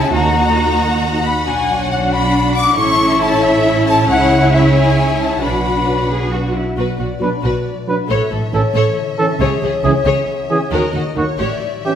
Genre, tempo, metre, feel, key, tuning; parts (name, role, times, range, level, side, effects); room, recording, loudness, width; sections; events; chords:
cinematic, heroic adventure film score; 91 BPM (dotted quarters); 6/8; straight; B dorian; A4 = 436 Hz
warm symphonic violin section; melody; 0.0-11.9 s; C#5 to D6; -24 LUFS; left 4 dB
mellow silver concert flute; second line; 0.0-6.1 s; E5 to D6; -18 LUFS; left 2 dB
warm symphonic violin section; second line; 0.0-11.6 s; D4 to F#5; -23 LUFS; left 3 dB
warm symphonic viola section; accompaniment; 0.0-11.6 s; A#3 to A4; -22 LUFS; right 1 dB
concert harp; arpeggios; 0.0-12.0 s; A2 to A#5; -23 LUFS; left 6 dB
dark studio double bass section; bass; 0.0-11.5 s; A1 to D#2; -19 LUFS; right 3 dB
warm symphonic cello section; bass; 0.0-11.5 s; A2 to G#4; -21 LUFS; right 2 dB
mellow trombone section; sustained chords; 7.2-11.9 s; D#3 to D4; -24 LUFS; right 3 dB
mellow trumpet; stabs; 7.2-11.9 s; F#4 to B4; -22 LUFS; right 1 dB
moderate scoring stage reverb, RT60 1.8 s; -13 LUFS; side -9 dB against mid
0.0-6.8 A section; 6.8-12.0 B section
0.1 D#m; 1.5 Bm; 2.8 A; 4.1 C#m; 5.4 Bm; 8.1 A; 9.4 C#m; 10.7 D#m; 11.4 A7